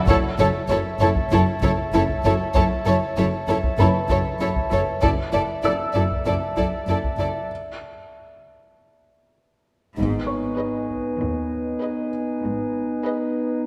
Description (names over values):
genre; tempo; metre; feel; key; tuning
cinematic, suspense film score; 97 BPM; 4/4; straight; F# minor, G# minor from 10.0 s; A4 = 438 Hz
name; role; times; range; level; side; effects
glass harmonica; sustained chords; 0.0-13.7 s; B4 to A5; -32 LUFS; equal; none
felt-muted upright piano; texture; 0.0-13.7 s; B4 to E6; -36 LUFS; equal; none
warm symphonic violin section; melody; 0.1-13.5 s; C#5 to D#5; -29 LUFS; equal; none
warm symphonic violin section; second line; 0.1-13.5 s; A4 to B4; -29 LUFS; equal; none
dark symphonic viola section; accompaniment; 0.1-13.5 s; E4 to G#4; -31 LUFS; equal; none
dark symphonic double bass section; bass; 0.1-12.9 s; F#1 to D#2; -30 LUFS; equal; none
rich symphonic cello section; bass; 0.1-12.9 s; D#2 to G#2; -29 LUFS; equal; none
taiko ensemble; drums; 0.1-11.2 s; none; -30 LUFS; equal; none
mellow French horn section; sustained chords; 10.0-13.7 s; B3 to D#4; -28 LUFS; equal; none
room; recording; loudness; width
moderate concert hall reverb, RT60 2.2 s; none; -22 LUFS; mono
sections
0.0-10.0 A section; 10.0-13.7 B section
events
break 7.5-10.0; band accent 10.0-10.6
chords
0.1 F#m7; 5.0 Dadd9/F#; 7.5 N.C.; 10.0 G#m